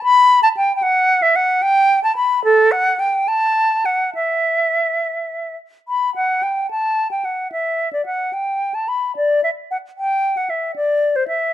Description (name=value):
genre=classical, baroque-style fantasia for unaccompanied flute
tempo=66-76 BPM (dotted quarters)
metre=6/8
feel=rubato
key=E minor, G major from 5.9 s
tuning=A4 = 440 Hz
part: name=silver concert flute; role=solo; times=0.0-11.5 s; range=A4 to B5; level=-15 LUFS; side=equal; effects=none
room=light reverb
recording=dark, warm production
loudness=-15 LUFS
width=side -12 dB against mid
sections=0.0-5.9 A section; 5.9-11.5 A section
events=none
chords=none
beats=0.03 | 0.82 1.62 | 2.43 3.27 | 4.13 5.00 | 5.88 6.70 | 7.52 8.32 | 9.16 9.97 | 10.76